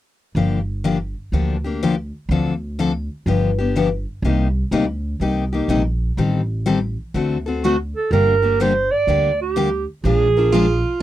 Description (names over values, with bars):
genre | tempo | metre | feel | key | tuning
acoustic string swing (jazz manouche) | 124 BPM | 4/4 | swing 65% on 8ths | G minor | A4 = 438 Hz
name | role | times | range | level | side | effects
upright bass | bass | 0.3-10.8 s | G1 to D2 | -22 LUFS | right 1 dB | none
picked steel-string acoustic guitar | accompaniment | 0.4-10.7 s | C3 to Bb4 | -19 LUFS | left 4 dB | none
warm clarinet | melody | 7.6-10.8 s | F#4 to D5 | -18 LUFS | right 4 dB | none
picked steel-string acoustic guitar | second line | 10.5-11.0 s | F4 | -20 LUFS | right 4 dB | none
room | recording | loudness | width
light reverb | dry, close 1970s-style studio recording | -17 LUFS | side -13 dB against mid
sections
0.4-8.1 A section; 8.1-11.0 B section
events
none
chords
0.4 Gm7; 2.3 Dm7; 3.3 G7; 4.2 Cm9; 6.2 Am7b5; 7.1 D7; 8.1 Gm; 10.0 Bb7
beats
| 0.36 0.85 1.33 1.82 | 2.30 2.79 3.27 3.76 | 4.24 4.72 5.21 5.69 | 6.18 6.66 7.14 7.63 | 8.11 8.60 9.08 9.56 | 10.04 10.53 11.01